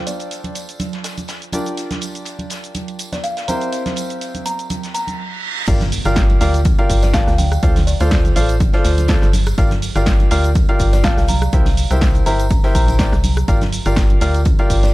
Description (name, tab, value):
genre	piano house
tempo	123 BPM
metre	4/4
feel	swing 55% on 16ths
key	G dorian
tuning	A4 = 436 Hz
part	clear grand piano	riff	0.0-14.9 s	C4 to A5	-23 LUFS	equal	sidechain pumping, low-pass filter, tape echo
part	kalimba	melody	0.1-14.9 s	D5 to Bb5	-27 LUFS	equal	tape echo
part	crisp fusion drum kit	drums	0.1-14.9 s	hi-hat, snare drum	-35 LUFS	left 2 dB	sidechain pumping on hats, high-pass filter on hats, low-pass filter on hats, high-pass filter on snare, low-pass filter on snare, high-pass filter on room, low-pass filter on room
part	punchy analog drum machine	drums	0.1-14.9 s	crash cymbal, hi-hat, rim click, shaker, snare drum	-25 LUFS	right 1 dB	none
part	tambourine and congas	percussion	0.1-14.9 s	none	-28 LUFS	right 3 dB	none
part	reverse cymbal and impact	sound effects	5.0-7.6 s	none	-27 LUFS	right 2 dB	none
part	organ-like FM bass	bass	5.7-14.9 s	G1 to D2	-17 LUFS	equal	sidechain pumping
part	electronic kick drum	drums	5.7-14.8 s	none	-16 LUFS	equal	none
room	small room ambience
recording	dark, warm production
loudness	-14 LUFS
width	side -18 dB against mid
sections	0.0-5.7 A section; 5.7-14.9 B section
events	reverse cymbal 5.0-5.7; drop 5.7-14.9; impact 5.7-7.6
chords	0.0 Dm7; 1.5 Gm7; 3.5 C7; 5.7 Gm7; 7.4 Dm7; 9.3 Gm7; 11.3 C7; 13.5 Gm7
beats	0.31 0.80 1.29 | 1.77 2.26 2.75 3.24 | 3.73 4.21 4.70 5.19 | 5.68 6.17 6.65 7.14 | 7.63 8.12 8.60 9.09 | 9.58 10.07 10.55 11.04 | 11.53 12.02 12.51 12.99 | 13.48 13.97 14.46